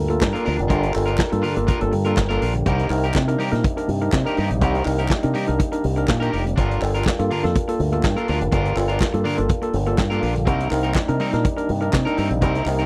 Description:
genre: disco.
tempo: 123 BPM.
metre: 4/4.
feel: straight.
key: G minor.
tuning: A4 = 441 Hz.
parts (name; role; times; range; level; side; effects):
barky tine electric piano; accompaniment; 0.0-12.8 s; G2 to Bb4; -27 LUFS; equal; none.
mellow French horn section; sustained chords; 0.0-12.9 s; C3 to Bb4; -30 LUFS; equal; none.
fingered electric bass with an envelope filter; bass; 0.0-12.9 s; F1 to C3; -25 LUFS; equal; none.
electric guitar at the edge of break-up; accompaniment; 0.1-12.9 s; C4 to Bb4; -30 LUFS; equal; none.
vintage drum kit; drums; 0.1-12.9 s; handclaps, hi-hat, kick drum, snare drum; -25 LUFS; equal; none.
group handclap; percussion; 0.2-12.8 s; none; -38 LUFS; equal; none.
room: little or no reverb.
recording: dry, close 1970s-style studio recording.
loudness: -21 LUFS.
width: mono.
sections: 0.0-12.9 A section.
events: none.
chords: 0.0 Gm7; 2.7 Cm7; 6.6 Gm7; 10.5 Cm7.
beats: 0.21 | 0.70 1.19 1.68 2.17 | 2.66 3.15 3.64 4.12 | 4.61 5.10 5.59 6.08 | 6.57 7.06 7.54 8.03 | 8.52 9.01 9.50 9.99 | 10.48 10.96 11.45 11.94 | 12.43.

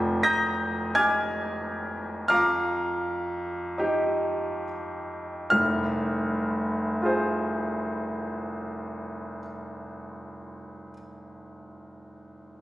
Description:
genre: classical, impressionist solo piano.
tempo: 32-45 BPM.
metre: 4/4.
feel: rubato.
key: F dorian.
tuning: A4 = 442 Hz.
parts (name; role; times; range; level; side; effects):
clear grand piano; solo; 0.0-12.6 s; F1 to Bb6; -26 LUFS; equal; none.
room: wet concert hall reverb, RT60 2.1 s.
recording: recorded on a phone in the room, studio reverb, compression.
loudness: -25 LUFS.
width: side -15 dB against mid.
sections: 0.0-5.5 A section; 5.5-11.4 B section.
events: slowing down 0.0-5.5.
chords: 0.0 Fm11; 2.3 Ebadd9/F; 5.5 Fm.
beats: 0.94 2.30 3.79 | 5.52 7.01 8.50 9.98.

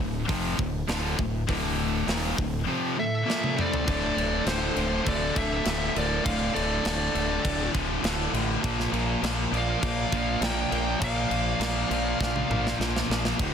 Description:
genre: heavy metal.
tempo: 101 BPM.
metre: 4/4.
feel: straight.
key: D minor.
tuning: A4 = 441 Hz.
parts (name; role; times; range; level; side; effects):
fuzz guitar; riff; 0.0-13.5 s; D2 to C4; -34 LUFS; equal; distortion.
high-gain distorted guitar; riff; 0.0-13.5 s; D2 to C4; -31 LUFS; left 12 dB; distortion.
high-gain distorted guitar; riff; 0.0-13.5 s; D2 to C4; -32 LUFS; right 12 dB; distortion.
growling fingered electric bass; bass; 0.0-13.5 s; D1 to Bb1; -31 LUFS; equal; overdrive.
tight metal drum kit; drums; 0.3-13.5 s; crash cymbal, hi-hat, kick drum, snare drum, splash cymbal, toms; -31 LUFS; equal; soft clipping on kick.
high-gain lead guitar; melody; 3.0-12.8 s; C5 to G5; -30 LUFS; equal; distortion.
bluesy overdriven lead guitar; second line; 3.0-12.7 s; A4 to D5; -37 LUFS; right 3 dB; distortion, digital delay.
room: little or no reverb.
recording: dense, heavily limited modern master.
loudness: -24 LUFS.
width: side -8 dB against mid.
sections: 0.0-3.9 A section; 3.9-13.5 B section.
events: drum fill 3.3-3.9, 12.2-13.4.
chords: 0.0 Dm; 3.9 D5; 8.6 Bb.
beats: 0.28 0.88 | 1.48 2.07 2.67 3.27 | 3.86 4.46 5.06 5.65 | 6.25 6.84 7.44 8.04 | 8.63 9.23 9.82 10.42 | 11.01 11.61 12.20 12.80 | 13.39.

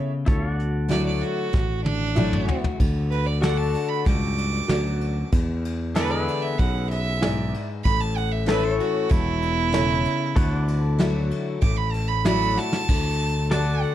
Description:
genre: honky-tonk and classic country.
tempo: 95 BPM.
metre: 4/4.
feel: straight.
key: D major.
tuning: A4 = 439 Hz.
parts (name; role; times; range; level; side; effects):
picked steel-string acoustic guitar; accompaniment; 0.0-13.9 s; E2 to F#4; -27 LUFS; left 4 dB; none.
tack piano; accompaniment; 0.0-13.9 s; E4 to D5; -30 LUFS; right 2 dB; none.
pedal steel guitar; sustained chords; 0.0-13.9 s; E4 to F#5; -34 LUFS; left 3 dB; none.
sustaining fretless electric bass; bass; 0.3-13.8 s; E1 to E2; -25 LUFS; equal; none.
soft brush drum kit; drums; 0.3-13.9 s; crash cymbal, hi-hat, kick drum, ride cymbal, snare drum, toms; -25 LUFS; equal; none.
bright fiddle; second line; 0.9-13.9 s; D4 to D6; -27 LUFS; right 6 dB; none.
room: moderate studio reverb, RT60 0.8 s.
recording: dark, warm production.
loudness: -20 LUFS.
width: side -12 dB against mid.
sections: 0.0-2.8 A section; 2.8-12.9 A section; 12.9-13.9 B section.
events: fiddle solo 0.0-12.9, 12.9-13.9; drum fill 1.5-2.8, 12.6-12.9.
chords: 0.3 Dadd9; 2.8 D; 5.3 E7; 7.8 A; 10.4 Dadd9; 12.9 D.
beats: | 0.28 0.91 1.54 2.17 | 2.80 3.43 4.06 4.69 | 5.32 5.95 6.58 7.21 | 7.84 8.47 9.11 9.73 | 10.37 11.00 11.63 12.26 | 12.89 13.52.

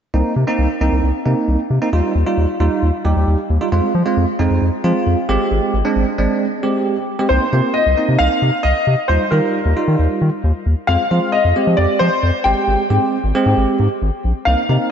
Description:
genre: synth-pop.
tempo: 134 BPM.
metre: 4/4.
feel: straight.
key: unclear.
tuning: A4 = 440 Hz.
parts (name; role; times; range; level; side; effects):
bell-like tine electric piano; accompaniment; 0.1-14.9 s; G3 to G4; -18 LUFS; right 3 dB; lush chorus.
round analog bass; bass; 0.1-14.8 s; Ab1 to F3; -16 LUFS; left 1 dB; none.
warm concert grand piano; melody; 7.3-14.9 s; Bb4 to G5; -18 LUFS; left 2 dB; analog chorus, tape echo.
room: wet lush hall reverb, RT60 2.6 s.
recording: dreamy mix soaked in reverb, nothing above 7.8 kHz.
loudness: -14 LUFS.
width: side -8 dB against mid.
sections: 0.1-7.3 A section; 7.3-14.9 B section.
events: none.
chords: 0.1 Cm7; 1.9 Ebadd9; 3.7 Fm; 5.3 Abmaj7; 7.3 Cm7; 9.1 Ebadd9; 10.9 Fm; 12.5 Abmaj7.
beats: | 0.14 0.59 1.03 1.48 | 1.93 2.38 2.83 3.27 | 3.72 4.17 4.62 5.07 | 5.51 5.96 6.41 6.86 | 7.30 7.75 8.20 8.65 | 9.10 9.54 9.99 10.44 | 10.89 11.33 11.78 12.23 | 12.68 13.12 13.57 14.02 | 14.47.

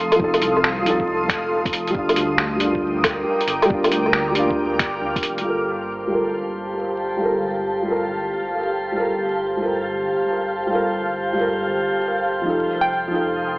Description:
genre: future garage.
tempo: 137 BPM.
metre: 4/4.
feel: swing 66% on 16ths.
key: G minor.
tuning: A4 = 441 Hz.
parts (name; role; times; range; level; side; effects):
felt-muted upright piano; accompaniment; 0.0-13.6 s; F3 to Bb4; -23 LUFS; equal; sidechain pumping, low-pass filter, dub echo.
granular cloud pad; sustained chords; 0.0-13.6 s; G4 to F6; -23 LUFS; equal; built-in reverb, sidechain pumping.
dark detuned saw bass; bass; 0.0-13.6 s; F1 to D2; -32 LUFS; equal; sidechain pumping.
lo-fi sampler-style drum kit; drums; 0.1-5.4 s; finger snaps, hi-hat, woodblock; -20 LUFS; equal; tape echo.
electronic kick drum; drums; 0.2-5.2 s; none; -27 LUFS; equal; none.
drifting glass-harmonics texture; texture; 5.9-13.6 s; C5; -29 LUFS; right 1 dB; chorus, built-in reverb.
glassy wavetable pluck; melody; 12.8-13.0 s; G5; -23 LUFS; right 1 dB; chorus, analog delay.
room: moderate echo chamber reverb, RT60 1.6 s, digital ambience.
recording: echo-heavy mix, vinyl crackle, AM radio sound.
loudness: -18 LUFS.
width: side -24 dB against mid.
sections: 0.0-5.5 A section; 5.5-13.6 B section.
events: filter sweep on felt piano 5.5-13.6.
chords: 0.0 F7; 1.9 Ebmaj7/G; 5.5 Gm9; 12.5 F7.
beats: | 0.20 0.63 1.07 1.51 | 1.95 2.39 2.82 3.26 | 3.70 4.14 4.58 5.01 | 5.45 5.89 6.33 6.77 | 7.20 7.64 8.08 8.52 | 8.96 9.39 9.83 10.27 | 10.71 11.14 11.58 12.02 | 12.46 12.90 13.34.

